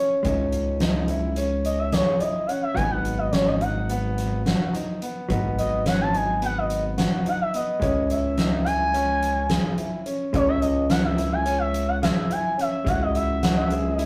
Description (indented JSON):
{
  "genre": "progressive instrumental, band music in an uneven meter",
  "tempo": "214 BPM (eighths)",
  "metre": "9/8",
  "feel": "straight",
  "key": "C# minor",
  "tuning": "A4 = 440 Hz",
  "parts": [
    { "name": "expressive portamento lead", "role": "melody", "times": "0.0-14.1 s", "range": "C#5 to A5", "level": "-27 LUFS", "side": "equal", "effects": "chorus" },
    { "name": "hollow-body jazz guitar", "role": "accompaniment", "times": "0.0-14.1 s", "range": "F#3 to F#4", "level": "-36 LUFS", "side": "equal", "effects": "none" },
    { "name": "warm concert grand piano", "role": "arpeggios", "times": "0.0-14.1 s", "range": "B3 to G#4", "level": "-32 LUFS", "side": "equal", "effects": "none" },
    { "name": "round analog bass", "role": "bass", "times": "0.2-14.1 s", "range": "G#1 to C#2", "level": "-29 LUFS", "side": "equal", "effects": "none" },
    { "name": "soft-mallet drum kit", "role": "drums", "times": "0.2-14.1 s", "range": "hi-hat, kick drum, snare drum", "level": "-29 LUFS", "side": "equal", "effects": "none" }
  ],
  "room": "wet studio reverb, RT60 0.5 s",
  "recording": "rough rehearsal-room recording, tube saturation",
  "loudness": "-24 LUFS",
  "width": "mono",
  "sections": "0.0-14.1 A section",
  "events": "analog synth lead solo 0.0-14.1",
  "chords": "0.0 C#m; 2.8 G#m7; 7.8 C#m; 12.9 Eadd9/C#"
}